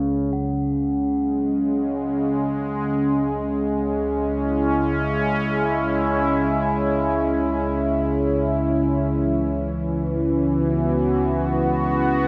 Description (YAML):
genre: dark ambient drone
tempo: free time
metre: none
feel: none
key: C# minor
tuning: A4 = 444 Hz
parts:
  - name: analog drone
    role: drone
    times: 0.0-12.3 s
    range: C#2 to C#3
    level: -26 LUFS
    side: equal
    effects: chorus
  - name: sweeping resonant pad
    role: sustained chords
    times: 0.3-12.3 s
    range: C#3 to F#4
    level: -24 LUFS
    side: equal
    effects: chorus
  - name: bronze singing bowl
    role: texture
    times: 0.3-12.3 s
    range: F#3 to F#5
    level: -45 LUFS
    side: equal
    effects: none
room: wet plate reverb, RT60 3.6 s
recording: dreamy mix soaked in reverb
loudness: -22 LUFS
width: mono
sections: 0.3-12.3 A section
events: none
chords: 0.3 C#m; 9.2 E5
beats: free time